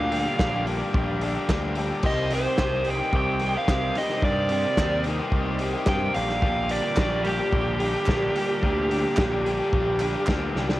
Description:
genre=indie rock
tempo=109 BPM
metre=4/4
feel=straight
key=G minor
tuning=A4 = 440 Hz
part: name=dark smooth lead guitar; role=melody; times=0.0-10.2 s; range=G4 to G5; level=-27 LUFS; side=right 1 dB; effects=overdrive, cassette tape, tape echo
part: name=combo organ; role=sustained chords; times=0.0-10.8 s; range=Eb4 to D6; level=-37 LUFS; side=right 1 dB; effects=none
part: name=overdriven electric guitar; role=riff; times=0.0-10.8 s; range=Bb2 to G4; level=-29 LUFS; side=left 4 dB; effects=none
part: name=raw garage guitar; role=riff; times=0.0-10.8 s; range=Bb2 to G4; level=-32 LUFS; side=right 4 dB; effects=overdrive, analog chorus, tape echo
part: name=growling picked electric bass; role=bass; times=0.0-10.8 s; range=Bb1 to G2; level=-29 LUFS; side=equal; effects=overdrive
part: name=loose indie drum kit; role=drums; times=0.1-10.8 s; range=crash cymbal, hi-hat, kick drum, snare drum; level=-27 LUFS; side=equal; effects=cassette tape
part: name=group handclap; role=percussion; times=0.4-10.4 s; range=none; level=-35 LUFS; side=right 2 dB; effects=none
room=small room ambience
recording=home recording on cassette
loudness=-22 LUFS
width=side -16 dB against mid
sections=0.0-10.8 A section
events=drum fill 10.5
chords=0.0 Gm7/Bb; 2.0 Cmadd9; 6.2 Gm7/Bb

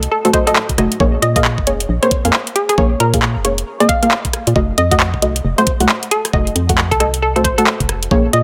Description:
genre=UK garage, two-step garage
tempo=135 BPM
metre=4/4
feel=swing 61% on 16ths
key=unclear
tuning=A4 = 439 Hz
part: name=organ-like FM bass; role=bass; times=0.0-8.4 s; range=F1 to Bb2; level=-20 LUFS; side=equal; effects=none
part: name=garage drum kit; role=drums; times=0.0-8.4 s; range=handclaps, hi-hat, rim click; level=-20 LUFS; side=equal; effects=none
part: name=hollow square pluck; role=melody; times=0.1-8.4 s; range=Ab4 to F5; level=-21 LUFS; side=equal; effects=chorus, delay
part: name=punchy chord stab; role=stabs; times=0.2-8.4 s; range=A3 to Gb5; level=-20 LUFS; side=equal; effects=chorus, delay
part: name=electronic kick drum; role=drums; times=0.3-8.2 s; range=none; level=-21 LUFS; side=equal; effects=none
room=light reverb, digital ambience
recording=none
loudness=-15 LUFS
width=mono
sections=0.0-8.4 A section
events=none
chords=0.0 F7b9 (rootless); 1.0 Bbm7; 4.6 F7b9

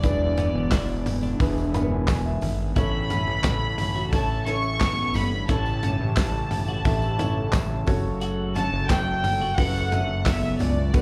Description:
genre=piano-driven pop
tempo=88 BPM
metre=4/4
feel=straight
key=unclear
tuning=A4 = 439 Hz
part: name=warm studio violin section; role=melody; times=0.0-11.0 s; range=D5 to C#6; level=-31 LUFS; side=equal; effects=none
part: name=warm upright piano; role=accompaniment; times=0.0-11.0 s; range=A2 to B5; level=-33 LUFS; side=equal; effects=slapback echo
part: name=warm analog pad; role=sustained chords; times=0.0-11.0 s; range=C#3 to A4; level=-36 LUFS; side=equal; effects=none
part: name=twelve-string electric guitar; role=riff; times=0.0-11.0 s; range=B3 to F#4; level=-36 LUFS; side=equal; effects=slapback echo
part: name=fat analog bass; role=bass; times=0.0-11.0 s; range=E1 to D2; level=-29 LUFS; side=equal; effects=none
part: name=modern studio drum kit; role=drums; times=0.0-11.0 s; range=handclaps, hi-hat, kick drum, snare drum, toms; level=-28 LUFS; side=equal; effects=none
part: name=tambourine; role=percussion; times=0.0-11.0 s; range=none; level=-52 LUFS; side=equal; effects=none
room=light reverb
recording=live gig heard through the venue's PA, club reverb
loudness=-24 LUFS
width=mono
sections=0.0-11.0 A section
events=upright piano fill 1.4-2.8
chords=0.0 E7; 2.8 A; 7.9 F#m

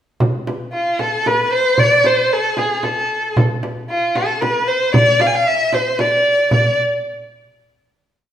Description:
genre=Arabic maqam ensemble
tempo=114 BPM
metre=3/4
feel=straight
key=D maqam nikriz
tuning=A4 = 435 Hz
part: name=frame drum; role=percussion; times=0.2-6.8 s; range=none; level=-19 LUFS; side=right 1 dB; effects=none
part: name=warm violin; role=melody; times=0.7-6.8 s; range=F4 to G#5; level=-15 LUFS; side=equal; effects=none
room=wet stone room reverb, RT60 1.3 s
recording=band playing live in one room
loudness=-14 LUFS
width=side -10 dB against mid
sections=0.2-6.5 A section; 6.5-8.1 final note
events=none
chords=none

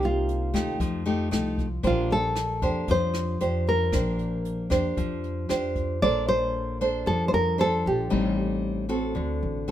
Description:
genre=bossa nova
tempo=115 BPM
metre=4/4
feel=straight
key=Bb major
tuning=A4 = 436 Hz
part: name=nylon-string guitar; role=melody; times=0.0-8.3 s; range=F4 to D5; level=-26 LUFS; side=equal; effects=none
part: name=nylon-string guitar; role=accompaniment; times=0.0-9.7 s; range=A2 to C5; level=-28 LUFS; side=equal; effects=none
part: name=upright bass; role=bass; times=0.0-9.7 s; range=A1 to F2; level=-29 LUFS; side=equal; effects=none
part: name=jazz brush drum kit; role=drums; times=0.0-5.9 s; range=hi-hat, kick drum, rim click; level=-32 LUFS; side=equal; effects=none
room=light reverb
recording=minimal, uncompressed stereo recording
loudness=-23 LUFS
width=side -11 dB against mid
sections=0.0-6.0 A section; 6.0-9.7 B section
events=none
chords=0.0 Cm7; 0.8 F9; 1.8 Bb69; 6.0 Bbmaj9; 8.1 Am7b5; 9.2 D7

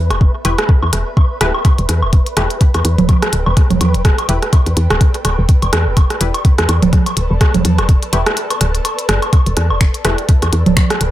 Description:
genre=minimal techno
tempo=125 BPM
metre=4/4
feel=swing 57% on 16ths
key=E minor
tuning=A4 = 440 Hz
part: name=woody FM bass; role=bass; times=0.0-11.1 s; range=D1 to E2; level=-16 LUFS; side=equal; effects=sidechain pumping
part: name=airy breathy pad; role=texture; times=0.0-11.1 s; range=A4 to A5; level=-29 LUFS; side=equal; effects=chorus, sidechain pumping
part: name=flickering grainy texture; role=texture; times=0.0-11.1 s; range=B4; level=-28 LUFS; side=equal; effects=built-in reverb, sidechain pumping
part: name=minimal click drum kit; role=drums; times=0.1-11.1 s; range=finger snaps, hi-hat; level=-22 LUFS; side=left 2 dB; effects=none
part: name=electronic rim click, woodblock and congas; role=percussion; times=0.1-11.0 s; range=none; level=-17 LUFS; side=right 2 dB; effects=digital delay
part: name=electronic kick drum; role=drums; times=0.2-10.9 s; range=none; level=-11 LUFS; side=equal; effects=none
part: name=filtered dub chord stab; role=stabs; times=0.4-10.1 s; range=E4 to B4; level=-24 LUFS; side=left 4 dB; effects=chorus, digital delay
room=little or no reverb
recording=none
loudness=-11 LUFS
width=side -14 dB against mid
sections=0.0-11.1 A section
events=fade-in on analog synth pad 0.0-11.1; break 8.4-9.3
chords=0.0 Em

